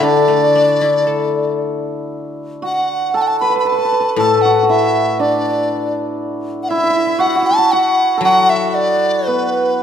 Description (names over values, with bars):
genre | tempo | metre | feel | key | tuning
chinese traditional, Chinese chamber ensemble | 58 BPM | 2/4 | rubato | D gong mode | A4 = 440 Hz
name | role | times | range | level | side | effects
mellow hollow large dizi | melody | 0.0-9.8 s | B4 to B5 | -16 LUFS | left 2 dB | none
hammered dulcimer | second line | 0.0-9.8 s | B3 to B4 | -17 LUFS | right 4 dB | none
guzheng | accompaniment | 0.0-9.8 s | A2 to A4 | -19 LUFS | left 7 dB | none
room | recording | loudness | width
wet scoring stage reverb, RT60 1.8 s | none | -13 LUFS | side -8 dB against mid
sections
0.0-2.1 A section; 2.1-9.8 B section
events
none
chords
none